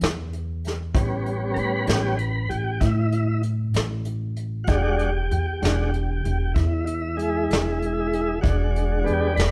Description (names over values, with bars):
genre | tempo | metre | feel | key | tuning
slow blues | 64 BPM (dotted quarters) | 12/8 | straight | unclear | A4 = 440 Hz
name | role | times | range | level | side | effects
upright bass | bass | 0.0-9.5 s | E1 to A2 | -27 LUFS | equal | none
vintage brush drum kit | drums | 0.0-9.5 s | hi-hat, kick drum, snare drum | -27 LUFS | equal | none
tonewheel organ | sustained chords | 0.9-9.5 s | G3 to B4 | -28 LUFS | equal | slow rotary speaker
room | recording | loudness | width
moderate stone room reverb, RT60 0.9 s | band playing live in one room | -24 LUFS | mono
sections
0.0-9.5 A section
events
tonewheel organ solo 0.0-9.5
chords
0.0 N.C.; 1.0 A9; 4.7 E9